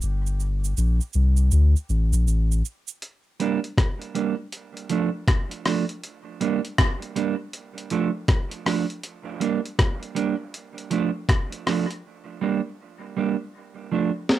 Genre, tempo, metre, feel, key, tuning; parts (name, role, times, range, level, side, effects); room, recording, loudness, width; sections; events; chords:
dub reggae; 80 BPM; 4/4; swing 64% on 16ths; A4 = 440 Hz
soft dub sub bass; bass; 0.0-2.6 s; G1 to D2; -19 LUFS; left 1 dB; transformer saturation
cabasa; percussion; 0.0-3.0 s; -34 LUFS; right 9 dB
breakbeat sampler-style drum kit; drums; 3.0-14.4 s; hi-hat, kick drum, rim click, snare drum; -22 LUFS; left 1 dB; cassette tape
mellow electric guitar; accompaniment; 3.4-14.1 s; F3 to D4; -26 LUFS; right 7 dB; cassette tape, dub echo
moderate studio ambience, RT60 0.5 s; home recording on cassette; -22 LUFS; side -13 dB against mid
0.0-3.0 A section; 3.0-14.4 B section
break 0.0-3.0
0.0 Gm; 1.5 D5; 2.3 N.C.; 3.0 Gm; 4.5 Dm; 6.0 Gm; 7.5 Dm; 9.0 Gm; 10.5 Dm; 12.0 Gm; 13.5 Dm